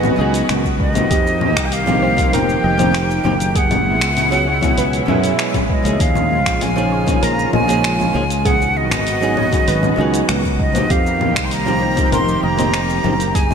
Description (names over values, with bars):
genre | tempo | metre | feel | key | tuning
sunset chillout | 98 BPM | 4/4 | straight | unclear | A4 = 441 Hz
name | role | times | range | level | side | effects
breathy bright concert flute | melody | 0.0-13.5 s | Eb5 to C6 | -20 LUFS | equal | ping-pong delay
archtop guitar, miked and amplified | accompaniment | 0.0-13.1 s | F3 to Ab4 | -22 LUFS | moving between left 5 dB and right 5 dB | auto-pan, ping-pong delay
lush unison pad | sustained chords | 0.0-13.5 s | Cb3 to G4 | -23 LUFS | equal | chorus
soft round pluck | arpeggios | 0.0-13.5 s | G4 to Fb5 | -27 LUFS | right 4 dB | chorus, ping-pong delay
sustaining fretless electric bass | bass | 0.0-13.5 s | F1 to Gb2 | -21 LUFS | equal | analog chorus
deep house drum kit | drums | 0.0-13.5 s | congas, finger snaps, hi-hat, shaker | -22 LUFS | left 2 dB | overdrive, gated reverb
electronic kick drum | drums | 0.6-13.5 s | none | -20 LUFS | equal | overdrive
room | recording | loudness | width
moderate lush hall reverb, RT60 2.6 s | bright 1980s-style digital production | -14 LUFS | side -6 dB against mid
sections
0.0-13.5 A section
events
none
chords
0.0 Db9sus4; 1.1 F9sus4; 3.6 Gb9sus4; 6.0 Eb9sus4; 8.5 Db9sus4; 10.9 F9sus4